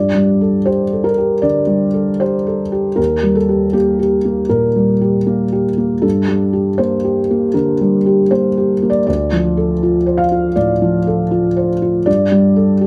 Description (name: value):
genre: neoclassical minimalist piano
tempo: 79 BPM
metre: 4/4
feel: rubato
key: G minor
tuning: A4 = 440 Hz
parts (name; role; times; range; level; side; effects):
- felt-muted upright piano; solo; 0.0-12.9 s; D2 to F5; -15 LUFS; equal; none
room: light reverb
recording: close, detailed microphones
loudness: -15 LUFS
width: mono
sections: 0.0-12.9 A section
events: none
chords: 0.0 Gsus2; 3.0 Eb; 6.0 Gmadd9; 9.1 Dm7; 12.1 Gsus2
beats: 0.68 1.45 2.21 | 2.98 3.75 4.52 5.29 | 6.04 6.80 7.56 8.33 | 9.08 9.82 10.57 11.32 | 12.07 12.82